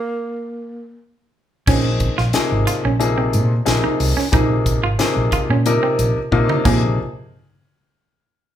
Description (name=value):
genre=electric jazz fusion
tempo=90 BPM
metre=4/4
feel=straight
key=unclear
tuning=A4 = 441 Hz
part: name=breathy tenor saxophone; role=melody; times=0.0-1.0 s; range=Bb3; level=-26 LUFS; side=right 2 dB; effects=none
part: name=clear grand piano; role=accompaniment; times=1.7-7.0 s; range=C3 to Bb4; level=-20 LUFS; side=left 3 dB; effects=none
part: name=clean electric guitar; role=stabs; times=1.7-6.9 s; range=Bb3 to F4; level=-23 LUFS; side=right 6 dB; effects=none
part: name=woody fretless electric bass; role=bass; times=1.7-7.0 s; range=Ab1 to Bb2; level=-20 LUFS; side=equal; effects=none
part: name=crisp fusion drum kit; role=drums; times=1.7-6.8 s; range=crash cymbal, hi-hat, kick drum, snare drum, toms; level=-21 LUFS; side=equal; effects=none
room=moderate large studio reverb, RT60 0.8 s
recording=band playing live in one room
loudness=-15 LUFS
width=side -10 dB against mid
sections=0.0-1.7 A section; 1.7-7.0 B section; 7.0-8.6 C section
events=stop 0.0-1.7; drum fill 6.3-7.0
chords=0.0 N.C.; 1.7 Dbmaj9; 6.7 Bb9sus4; 7.0 N.C.